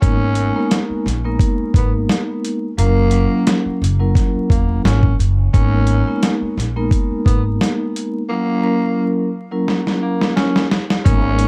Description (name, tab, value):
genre	hip hop, boom-bap hip-hop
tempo	87 BPM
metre	4/4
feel	swing 55% on 16ths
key	G# minor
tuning	A4 = 440 Hz
part	growling tenor saxophone	melody	0.0-11.5 s	A#3 to C#4	-26 LUFS	equal	high-pass filter, low-pass filter, plate reverb, analog delay
part	vibraphone with soft mallets	accompaniment	0.0-11.5 s	F#3 to A#4	-22 LUFS	equal	cassette tape, high-pass filter, low-pass filter
part	upright bass	bass	0.0-11.5 s	E1 to A#1	-20 LUFS	equal	none
part	dusty soul sampler-style drum kit	drums	0.0-11.5 s	hi-hat, kick drum, snare drum	-19 LUFS	equal	overdrive
room	moderate studio reverb, RT60 0.6 s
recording	dark, warm production, vinyl crackle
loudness	-17 LUFS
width	mono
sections	0.0-11.1 A section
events	drum fill 9.7-11.1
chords	0.0 G#madd9; 2.8 F#7; 5.5 G#madd9; 8.3 F#7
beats	| 0.02 0.71 1.40 2.09 | 2.78 3.47 4.16 4.85 | 5.54 6.23 6.92 7.61 | 8.30 8.99 9.68 10.37 | 11.05